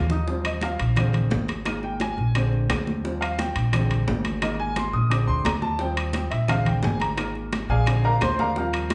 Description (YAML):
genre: Afro-Cuban jazz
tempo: 174 BPM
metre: 4/4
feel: straight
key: unclear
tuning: A4 = 440 Hz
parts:
  - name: clear upright piano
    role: accompaniment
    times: 0.0-8.9 s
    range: D3 to Eb6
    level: -29 LUFS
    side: equal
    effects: none
  - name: upright bass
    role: bass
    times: 0.0-8.9 s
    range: Ab1 to Eb2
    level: -27 LUFS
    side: equal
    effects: none
  - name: bongos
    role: percussion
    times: 0.1-8.9 s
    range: none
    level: -39 LUFS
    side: equal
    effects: none
  - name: congas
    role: percussion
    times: 0.1-8.9 s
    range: none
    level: -32 LUFS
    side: equal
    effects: none
  - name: timbales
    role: percussion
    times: 0.4-8.9 s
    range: none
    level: -33 LUFS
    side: equal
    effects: none
  - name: claves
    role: percussion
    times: 0.5-8.9 s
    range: none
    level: -41 LUFS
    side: equal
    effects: none
room: wet large studio reverb, RT60 0.9 s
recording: band playing live in one room, nothing above 10.3 kHz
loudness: -24 LUFS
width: mono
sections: 0.3-8.9 A section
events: drum fill 0.0; upright piano solo 0.3-8.9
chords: 0.3 Eb69; 1.0 Bb7; 1.7 Absus2; 2.4 Bb7; 3.0 Eb69; 3.7 Bb7; 4.4 Absus2; 5.1 Bb7; 5.8 Eb69; 6.5 Bb7; 7.2 Absus2; 7.9 Bb7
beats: | 0.28 0.63 0.97 1.32 | 1.66 2.01 2.35 2.70 | 3.04 3.38 3.73 4.08 | 4.42 4.76 5.11 5.45 | 5.80 6.14 6.49 6.83 | 7.18 7.52 7.87 8.21 | 8.56 8.90